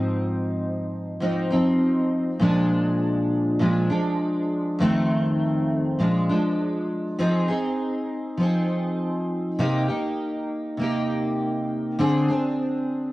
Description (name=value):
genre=indie pop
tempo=100 BPM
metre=4/4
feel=straight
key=unclear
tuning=A4 = 440 Hz
part: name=picked steel-string acoustic guitar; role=solo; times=0.0-13.1 s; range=F2 to Ab4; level=-21 LUFS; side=equal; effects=lush chorus, vibrato effect
room=moderate studio reverb, RT60 0.6 s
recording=worn, warbling old tape, cassette tape, warbly pitch drift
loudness=-21 LUFS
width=side -18 dB against mid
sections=0.0-7.2 A section; 7.2-13.1 B section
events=none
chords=0.0 Ab6; 2.4 Bb7; 4.8 F7; 6.0 Bb7; 7.2 Fm7; 9.6 Cm7; 12.0 Csus2/D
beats=| 0.02 0.61 1.21 1.81 | 2.41 3.01 3.60 4.20 | 4.80 5.40 6.00 6.59 | 7.19 7.79 8.39 8.99 | 9.59 10.19 10.79 11.39 | 11.99 12.59